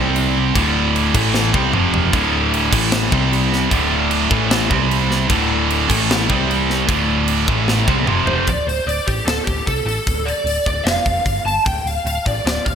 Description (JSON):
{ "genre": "hard rock", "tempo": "151 BPM", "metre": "4/4", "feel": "straight", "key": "D minor", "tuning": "A4 = 439 Hz", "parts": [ { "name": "scooped high-gain guitar", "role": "riff", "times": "0.0-8.5 s", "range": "D2 to C4", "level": "-18 LUFS", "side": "right 9 dB", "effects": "distortion" }, { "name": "sludgy distorted guitar", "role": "riff", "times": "0.0-8.5 s", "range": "D2 to C4", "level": "-21 LUFS", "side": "left 10 dB", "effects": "overdrive" }, { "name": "hollow-body short-scale picked electric bass", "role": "bass", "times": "0.0-12.8 s", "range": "D1 to C2", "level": "-22 LUFS", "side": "equal", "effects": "none" }, { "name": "tight metal drum kit", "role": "drums", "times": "0.2-12.8 s", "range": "crash cymbal, hi-hat, kick drum, snare drum, toms", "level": "-21 LUFS", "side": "equal", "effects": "none" }, { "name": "lead guitar through a small cranked amp", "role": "melody", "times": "8.3-12.8 s", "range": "G4 to A5", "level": "-20 LUFS", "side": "equal", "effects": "overdrive, ensemble chorus" } ], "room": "moderate plate reverb, RT60 2.4 s", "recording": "bright 1980s-style digital production", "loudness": "-15 LUFS", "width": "side -7 dB against mid", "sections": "0.0-8.5 A section; 8.5-12.8 B section", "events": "drum fill 1.3-2.1, 7.7-8.5", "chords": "0.0 C5; 0.5 D5; 1.1 A5; 1.5 C5; 1.7 F5; 2.1 D5; 2.7 A5; 3.1 C5; 3.7 D5; 4.3 A5; 4.7 C5; 5.3 D5; 5.9 A5; 6.3 C5; 6.9 D5; 7.5 A5; 7.9 C5; 8.1 F5; 8.5 D5; 10.9 N.C.; 11.3 Fadd9/G; 11.7 D5" }